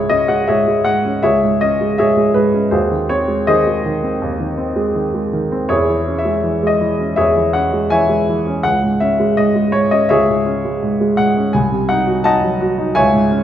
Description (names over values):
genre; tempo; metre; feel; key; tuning
classical, romantic character piece for solo piano; 82 BPM; 4/4; rubato; C# minor; A4 = 440 Hz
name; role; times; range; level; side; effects
warm grand piano; solo; 0.0-13.4 s; C2 to A5; -13 LUFS; equal; none
room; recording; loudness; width
wet recital hall reverb, RT60 1.4 s; none; -13 LUFS; side -10 dB against mid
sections
0.0-13.4 A section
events
none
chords
0.0 C#m; 2.7 G#7/D#; 5.7 C#m/E; 8.6 C#m; 11.5 Cdim7